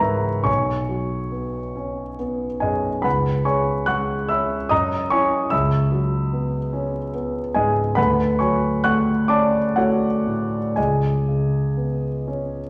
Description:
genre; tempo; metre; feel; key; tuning
classical, impressionist solo piano; 58-75 BPM; 3/4; rubato; C# dorian; A4 = 440 Hz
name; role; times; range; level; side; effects
warm grand piano; solo; 0.0-12.7 s; B1 to F#6; -21 LUFS; equal; none
room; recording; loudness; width
wet recital hall reverb, RT60 1.4 s; recorded in a church or concert hall, vinyl crackle; -21 LUFS; mono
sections
0.0-12.7 A section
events
none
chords
0.5 Badd9; 3.1 C#m7; 4.7 F#13; 5.5 C#m11; 8.0 Dmaj7; 10.8 C#7(no3)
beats
| 0.47 1.33 2.19 | 3.05 3.89 4.71 | 5.52 6.33 7.15 | 7.97 8.83 9.76 | 10.77 11.77

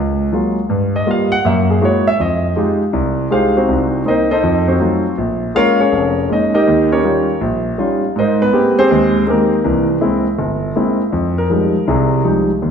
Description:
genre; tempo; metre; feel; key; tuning
jazz; 161 BPM; 4/4; swing 64% on 8ths; F minor; A4 = 442 Hz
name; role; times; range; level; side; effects
warm grand piano; solo; 0.0-12.7 s; F1 to Gb5; -13 LUFS; equal; none
room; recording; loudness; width
wet recital hall reverb, RT60 1.6 s; recorded in a church or concert hall; -13 LUFS; side -7 dB against mid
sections
0.0-11.1 A section; 11.1-12.7 A section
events
grand piano solo 0.0-11.1, 11.1-12.7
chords
0.0 Gbmaj9; 0.7 Gm7; 1.4 Gb9; 2.2 Fm9; 3.7 Cm7b5; 4.4 F7b9; 5.2 Bbm7; 6.7 Eb9; 8.2 Abmaj9; 9.6 C7b13; 11.1 Fm9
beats
0.33 | 0.70 1.07 1.45 1.82 | 2.19 2.57 2.94 3.31 | 3.69 4.06 4.43 4.80 | 5.18 5.55 5.92 6.29 | 6.67 7.04 7.41 7.78 | 8.15 8.52 8.89 9.27 | 9.64 10.01 10.38 10.75 | 11.12 11.50 11.87 12.24 | 12.61

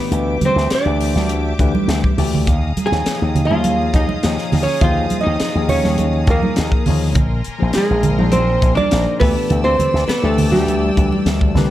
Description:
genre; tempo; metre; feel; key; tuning
electric jazz fusion; 102 BPM; 4/4; straight; unclear; A4 = 439 Hz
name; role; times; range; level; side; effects
nylon-string guitar; melody; 0.0-11.5 s; G4 to Ab5; -21 LUFS; right 4 dB; none
vintage hollow-body jazz guitar; second line; 0.0-11.5 s; G3 to Ab4; -24 LUFS; left 2 dB; analog delay
tine electric piano; accompaniment; 0.0-11.7 s; E3 to Eb5; -24 LUFS; left 8 dB; none
clear studio string section; sustained chords; 0.0-11.7 s; G4 to E6; -29 LUFS; left 2 dB; none
slap bass with an envelope filter; bass; 0.1-11.7 s; Bb1 to Eb2; -18 LUFS; equal; none
crisp fusion drum kit; drums; 0.1-11.7 s; hi-hat, kick drum, snare drum; -20 LUFS; equal; none
congas; percussion; 0.4-11.7 s; none; -21 LUFS; right 4 dB; none
room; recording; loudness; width
light reverb, small room ambience; dark, warm production; -14 LUFS; side -13 dB against mid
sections
0.0-11.7 A section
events
drum fill 2.0-2.5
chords
0.0 Dsus24; 2.5 Eb9sus4; 7.2 Bb9sus4; 9.2 D9sus4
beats
| 0.12 0.71 1.29 1.88 | 2.47 3.05 3.64 4.23 | 4.81 5.40 5.99 6.57 | 7.16 7.75 8.33 8.92 | 9.51 10.09 10.68 11.27

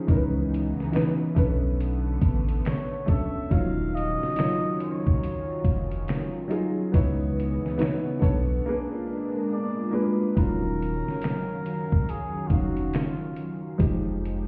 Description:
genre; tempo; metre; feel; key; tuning
lo-fi hip hop; 70 BPM; 4/4; swing 62% on 16ths; Eb minor from 10.4 s; A4 = 441 Hz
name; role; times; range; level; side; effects
warm upright piano; accompaniment; 0.0-14.5 s; Eb3 to F5; -31 LUFS; equal; cassette tape
lush unison pad; sustained chords; 0.0-14.5 s; Db3 to F5; -35 LUFS; equal; chorus, phaser
warm sub bass; bass; 0.1-14.5 s; Eb1 to Db2; -30 LUFS; equal; none
lo-fi sampler-style drum kit; drums; 0.1-14.5 s; finger snaps, hi-hat, kick drum, snare drum; -27 LUFS; equal; none
trumpet with cup mute; melody; 2.7-13.6 s; F4 to F5; -36 LUFS; equal; tape echo
vibraphone with medium mallets; second line; 8.9-10.3 s; Ab3 to D5; -34 LUFS; equal; tape echo
room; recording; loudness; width
light reverb, small room ambience; heard muffled through a wall, stone room reverb, vinyl crackle, EQ; -26 LUFS; mono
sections
0.0-10.4 A section; 10.4-14.5 B section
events
break 8.7-10.4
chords
0.1 Dbm9; 1.4 Bm9; 3.5 Ebm9; 6.9 Dbm9; 8.2 Bm9; 8.7 Bb7b9; 10.4 Ebm9; 13.8 Fm9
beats
| 0.08 0.94 1.79 2.65 | 3.51 4.37 5.22 6.08 | 6.94 7.79 8.65 9.51 | 10.37 11.22 12.08 12.94 | 13.79

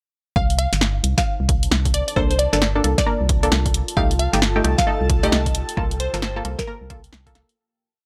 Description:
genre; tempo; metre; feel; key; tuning
UK garage, two-step garage; 133 BPM; 4/4; swing 62% on 16ths; C dorian; A4 = 441 Hz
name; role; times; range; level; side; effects
glassy wavetable pluck; melody; 0.4-6.8 s; Bb4 to F5; -28 LUFS; equal; chorus
organ-like FM bass; bass; 0.4-7.4 s; G1 to C2; -24 LUFS; equal; none
electronic kick drum; drums; 0.4-7.3 s; none; -25 LUFS; equal; none
deep dark ambient pad; texture; 1.1-7.6 s; Bb3 to A5; -36 LUFS; equal; chorus, built-in reverb, sidechain pumping
punchy analog drum machine; drums; 0.5-7.6 s; hi-hat, snare drum; -24 LUFS; equal; none
punchy chord stab; stabs; 2.2-7.6 s; A3 to Bb4; -26 LUFS; equal; chorus
airy breathy pad; sustained chords; 4.0-7.6 s; A4 to A5; -36 LUFS; equal; chorus, sidechain pumping
room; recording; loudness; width
digital ambience; dry, gritty hardware recording; -20 LUFS; mono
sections
0.4-7.6 groove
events
fade-out 5.2-7.6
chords
0.4 Cm69; 1.9 Bbmaj7; 3.7 F9; 5.8 Gm9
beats
| 0.36 0.81 1.26 1.71 | 2.16 2.62 3.07 3.52 | 3.97 4.42 4.87 5.32 | 5.77 6.22 6.67 7.13

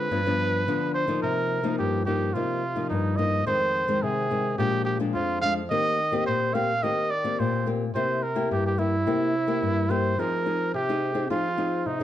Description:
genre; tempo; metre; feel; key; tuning
samba; 107 BPM; 4/4; straight; C minor; A4 = 439 Hz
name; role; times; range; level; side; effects
warm trumpet; melody; 0.0-12.0 s; Eb4 to F5; -26 LUFS; right 2 dB; plate reverb
nylon-string guitar; accompaniment; 0.0-12.0 s; F2 to Ab4; -26 LUFS; left 3 dB; none
room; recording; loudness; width
moderate large studio reverb, RT60 1.0 s; dark, warm production; -23 LUFS; side -12 dB against mid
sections
0.0-1.2 A section; 1.2-12.0 B section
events
none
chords
0.1 G7; 1.2 Cm7; 3.5 Fm7; 4.6 Bb7; 5.7 Eb6; 8.0 C7; 10.2 Fm7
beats
0.11 0.67 | 1.23 1.79 2.35 2.91 | 3.47 4.03 4.59 5.15 | 5.71 6.27 6.83 7.39 | 7.95 8.51 9.07 9.63 | 10.19 10.74 11.30 11.86

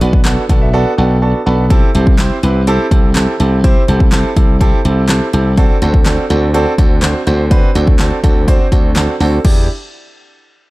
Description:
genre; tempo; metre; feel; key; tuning
dance-pop; 124 BPM; 4/4; straight; E minor; A4 = 442 Hz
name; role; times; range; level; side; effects
clear baby grand piano; accompaniment; 0.0-9.7 s; B3 to B5; -16 LUFS; right 2 dB; sidechain pumping
glassy slap bass; bass; 0.0-9.7 s; B1 to E2; -14 LUFS; equal; sidechain pumping
pop drum kit; drums; 0.0-9.6 s; crash cymbal, handclaps, hi-hat, kick drum, snare drum; -12 LUFS; equal; none
room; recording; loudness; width
little or no reverb; dark, warm production; -10 LUFS; side -20 dB against mid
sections
0.0-9.4 A section; 9.4-10.7 B section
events
grand piano fill 0.3-1.7; silent gap 0.7-1.7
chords
0.0 Bm7; 1.7 C6; 5.6 D7; 9.4 Em7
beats
0.25 0.74 1.22 | 1.71 2.19 2.67 3.16 | 3.64 4.12 4.61 5.09 | 5.58 6.06 6.54 7.03 | 7.51 8.00 8.48 8.96 | 9.45

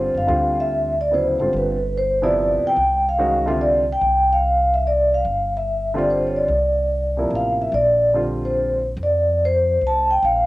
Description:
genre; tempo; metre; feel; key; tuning
modal jazz; 145 BPM; 3/4; swing 66% on 8ths; unclear; A4 = 440 Hz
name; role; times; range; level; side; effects
vibraphone with medium mallets; melody; 0.0-10.5 s; B4 to A5; -18 LUFS; equal; cassette tape, plate reverb
warm upright piano; accompaniment; 0.0-3.8, 5.9-8.8 s; C3 to F#4; -25 LUFS; right 1 dB; cassette tape, plate reverb
upright bass; bass; 0.0-10.5 s; F#1 to F2; -25 LUFS; equal; none
room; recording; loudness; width
moderate small room reverb, RT60 0.5 s; home recording on cassette; -17 LUFS; side -18 dB against mid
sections
0.0-7.7 A section; 7.7-10.5 B section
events
none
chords
0.0 G7sus4; 2.8 Csus4; 7.7 Bbadd9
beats
| 0.30 0.71 1.12 | 1.54 1.95 2.36 | 2.78 3.19 3.60 | 4.01 4.43 4.84 | 5.26 5.67 6.08 | 6.50 6.91 7.33 | 7.74 8.16 8.57 | 8.99 9.40 9.82 | 10.23

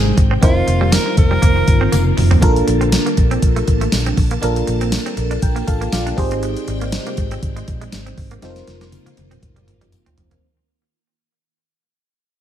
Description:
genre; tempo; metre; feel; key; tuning
1980s-style pop; 120 BPM; 4/4; swing 55% on 16ths; Bb major; A4 = 440 Hz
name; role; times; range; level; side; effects
bright alto saxophone; melody; 0.0-2.1 s; F4 to Bb4; -23 LUFS; right 1 dB; ping-pong delay
FM electric piano; accompaniment; 0.0-10.5 s; Ab3 to A5; -22 LUFS; equal; chorus, phaser
phased string machine; sustained chords; 0.0-10.4 s; C3 to A5; -26 LUFS; left 2 dB; ensemble chorus, phaser
direct-recorded clean electric guitar; riff; 0.0-10.4 s; G3 to D4; -27 LUFS; right 6 dB; lush chorus, ping-pong delay
vintage muted fingered electric bass; bass; 0.0-10.4 s; F1 to Bb1; -19 LUFS; equal; none
clean 12-bit digital drum machine; drums; 0.2-10.4 s; hi-hat, kick drum, snare drum, tambourine, toms; -16 LUFS; equal; gated reverb
tambourine; percussion; 0.9-10.1 s; none; -34 LUFS; left 9 dB; none
room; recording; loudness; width
little or no reverb; none; -14 LUFS; side -10 dB against mid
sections
0.0-2.4 A section; 2.4-10.4 B section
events
drum fill 1.9-2.4, 8.4-10.4; fade-out 2.4-10.4; FM electric piano fill 5.4-6.4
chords
0.4 F7sus4; 2.4 Bbmaj7; 6.2 Abmaj7; 8.4 F7sus4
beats
| 0.43 0.93 1.43 1.93 | 2.43 2.93 3.43 3.93 | 4.43 4.93 5.43 5.93 | 6.43 6.93 7.43 7.93 | 8.43 8.93 9.43 9.93

